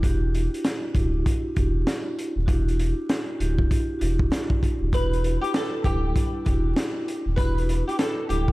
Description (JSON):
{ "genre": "hip hop, boom-bap hip-hop", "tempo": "98 BPM", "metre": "4/4", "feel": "swing 61% on 16ths", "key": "E minor", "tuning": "A4 = 440 Hz", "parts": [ { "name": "vibraphone with soft mallets", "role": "accompaniment", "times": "0.0-8.5 s", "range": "G3 to G4", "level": "-29 LUFS", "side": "equal", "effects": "cassette tape, high-pass filter, low-pass filter" }, { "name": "sub bass with octave", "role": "bass", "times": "0.0-8.5 s", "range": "D1 to E1", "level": "-24 LUFS", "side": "equal", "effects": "none" }, { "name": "crunchy breakbeat drum kit", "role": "drums", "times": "0.0-8.5 s", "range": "hi-hat, kick drum, snare drum", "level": "-25 LUFS", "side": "equal", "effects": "none" }, { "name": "flamenco guitar", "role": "melody", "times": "4.9-8.5 s", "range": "G4 to B4", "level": "-30 LUFS", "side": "equal", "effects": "ensemble chorus, high-pass filter, low-pass filter, diffuse ambient delay" } ], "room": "light reverb, small room ambience", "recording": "vinyl crackle", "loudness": "-22 LUFS", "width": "side -20 dB against mid", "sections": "0.0-8.5 A section", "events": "none", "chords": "0.0 Em9", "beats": "| 0.03 0.64 1.26 1.87 | 2.48 3.09 3.71 4.32 | 4.93 5.54 6.16 6.77 | 7.38 7.99" }